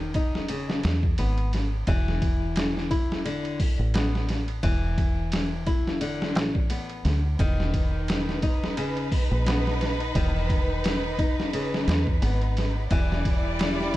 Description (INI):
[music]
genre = trip hop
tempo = 87 BPM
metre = 4/4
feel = swing 56% on 16ths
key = unclear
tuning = A4 = 441 Hz
[part]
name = flamenco guitar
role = arpeggios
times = 0.0-14.0 s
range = C#3 to E4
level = -31 LUFS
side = left 2 dB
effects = tape echo
[part]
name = deep dub fingered electric bass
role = bass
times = 0.0-14.0 s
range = E1 to E2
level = -27 LUFS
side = equal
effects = tube saturation
[part]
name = trip hop sampler-style drum kit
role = drums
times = 0.1-14.0 s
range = hi-hat, kick drum, ride cymbal, snare drum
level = -26 LUFS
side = equal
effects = none
[part]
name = rich studio violin section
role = sustained chords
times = 7.4-14.0 s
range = G3 to D5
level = -31 LUFS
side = right 1 dB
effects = none
[sound]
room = digital ambience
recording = dark, warm production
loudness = -23 LUFS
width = side -16 dB against mid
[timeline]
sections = 0.0-14.0 A section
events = none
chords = 0.0 B/E; 1.9 E5; 7.4 Bmaj7/E; 12.9 Em7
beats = 0.49 1.18 | 1.87 2.56 3.25 3.94 | 4.63 5.32 6.01 6.70 | 7.39 8.08 8.77 9.46 | 10.15 10.84 11.53 12.21 | 12.90 13.60